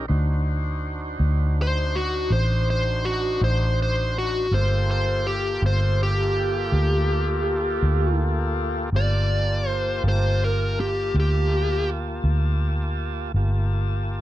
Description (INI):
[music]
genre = slow blues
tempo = 54 BPM (dotted quarters)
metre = 12/8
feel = straight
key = G minor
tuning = A4 = 440 Hz
[part]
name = tonewheel organ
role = sustained chords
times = 0.0-14.2 s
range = Bb3 to A5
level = -30 LUFS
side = equal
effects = slow rotary speaker, overdrive
[part]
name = vintage muted fingered electric bass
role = bass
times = 0.0-14.2 s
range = G1 to D2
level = -22 LUFS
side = equal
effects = none
[part]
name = dark smooth lead guitar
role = melody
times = 1.6-11.9 s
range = F#4 to D5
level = -25 LUFS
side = equal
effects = overdrive, slapback echo
[sound]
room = little or no reverb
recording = dry, close 1970s-style studio recording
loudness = -20 LUFS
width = side -14 dB against mid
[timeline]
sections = 0.0-13.3 A section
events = none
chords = 0.1 D7b9; 4.5 Gm9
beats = | 0.10 1.21 2.31 3.42 | 4.52 5.62 6.73 7.83 | 8.94 10.04 11.14 12.25 | 13.35